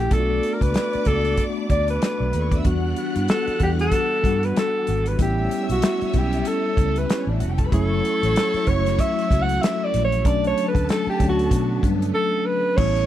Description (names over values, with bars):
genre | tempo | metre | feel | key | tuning
lush 1970s-style soul | 95 BPM | 4/4 | swing 58% on 16ths | unclear | A4 = 438 Hz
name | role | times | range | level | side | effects
warm alto saxophone | melody | 0.0-13.1 s | F#4 to F#5 | -23 LUFS | equal | none
mellow tine electric piano | accompaniment | 0.0-13.1 s | F#3 to A4 | -26 LUFS | left 2 dB | medium stereo tremolo
phased string machine | sustained chords | 0.0-13.1 s | D3 to F#4 | -33 LUFS | equal | ensemble chorus, phaser
vintage muted fingered electric bass | bass | 0.0-13.1 s | F1 to B2 | -24 LUFS | equal | none
dark symphonic string section | second line | 0.1-13.1 s | C#4 to F#6 | -34 LUFS | left 1 dB | none
warm soul drum kit | drums | 0.1-13.1 s | crash cymbal, hi-hat, kick drum, snare drum | -23 LUFS | equal | none
room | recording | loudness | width
little or no reverb | none | -19 LUFS | side -12 dB against mid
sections
0.0-12.8 A section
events
alto saxophone solo 0.0-12.8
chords
0.1 Bm7; 2.6 Em7; 5.2 A7; 7.7 F#m7; 10.3 Bm7